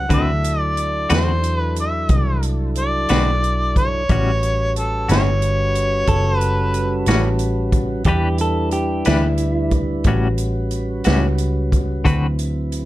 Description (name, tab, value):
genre	slow blues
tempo	60 BPM (dotted quarters)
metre	12/8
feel	straight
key	A mixolydian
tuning	A4 = 440 Hz
part	mellow harmonica	melody	0.0-7.1 s	A4 to F#5	-22 LUFS	equal	overdrive
part	mellow tonewheel organ	sustained chords	0.0-12.9 s	F#3 to B4	-25 LUFS	right 1 dB	slow rotary speaker
part	vintage muted fingered electric bass	bass	0.0-12.9 s	F#1 to E2	-20 LUFS	equal	none
part	clean electric guitar	accompaniment	0.1-12.3 s	A2 to B4	-21 LUFS	left 4 dB	tremolo
part	swinging big-band drum kit	drums	0.1-12.9 s	hi-hat, kick drum, snare drum	-21 LUFS	equal	none
part	clean electric guitar	second line	6.1-9.7 s	E4 to A4	-24 LUFS	equal	spring reverb
room	light reverb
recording	dark, warm production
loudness	-16 LUFS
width	side -16 dB against mid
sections	0.0-12.9 A section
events	none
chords	0.1 D13; 4.1 A13; 8.1 Em7; 10.1 A13; 12.1 D13